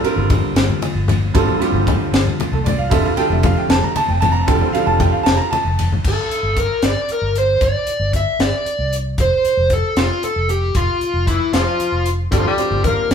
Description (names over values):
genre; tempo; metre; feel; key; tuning
electric jazz fusion; 76 BPM (dotted quarters); 6/8; straight; G minor; A4 = 440 Hz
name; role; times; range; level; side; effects
bright concert grand piano; accompaniment; 0.0-5.9, 12.3-13.1 s; D3 to Bb5; -19 LUFS; right 3 dB; none
hollow soft pad; sustained chords; 0.0-6.0 s; D3 to F4; -27 LUFS; left 4 dB; ensemble chorus
mellow fretless electric bass; bass; 0.0-13.1 s; F1 to C2; -21 LUFS; equal; none
crisp fusion drum kit; drums; 0.0-13.1 s; crash cymbal, hi-hat, kick drum, ride cymbal, snare drum; -21 LUFS; left 1 dB; none
congas; percussion; 0.2-6.0, 12.3-13.0 s; none; -22 LUFS; left 3 dB; none
dark smooth lead guitar; melody; 6.1-13.1 s; E4 to E5; -18 LUFS; equal; overdrive
bright tenor saxophone; second line; 11.3-13.1 s; E3 to Bb3; -22 LUFS; left 4 dB; none
room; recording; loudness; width
moderate large studio reverb, RT60 0.9 s; band playing live in one room; -15 LUFS; side -7 dB against mid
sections
0.0-6.0 A section; 6.0-13.1 B section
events
drum fill 5.7-6.0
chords
0.0 Gm7; 2.9 F6; 6.0 G5; 9.2 F5; 12.3 Gsus2